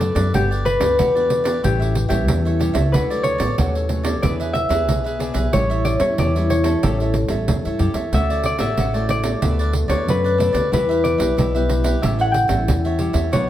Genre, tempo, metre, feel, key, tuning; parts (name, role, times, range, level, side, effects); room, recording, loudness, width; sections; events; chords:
samba and choro; 92 BPM; 4/4; straight; A4 = 440 Hz
Celtic harp; melody; 0.0-13.5 s; G4 to G5; -22 LUFS; left 2 dB
cavaquinho; accompaniment; 0.0-13.5 s; D4 to F#5; -28 LUFS; right 3 dB
nylon-string guitar; accompaniment; 0.0-13.5 s; A2 to G#4; -26 LUFS; left 2 dB
upright bass; bass; 0.0-13.5 s; G1 to G2; -21 LUFS; equal
pandeiro; percussion; 0.0-13.5 s; -24 LUFS; right 3 dB
wet studio reverb, RT60 0.7 s; heard from further back in the room; -16 LUFS; side -12 dB against mid
0.0-13.5 A section
0.3 Gmaj7; 1.6 A7; 2.9 Dmaj7; 4.2 E7; 5.5 A7; 8.1 Dmaj7; 9.4 Bm7/D; 10.7 Em; 12.0 A7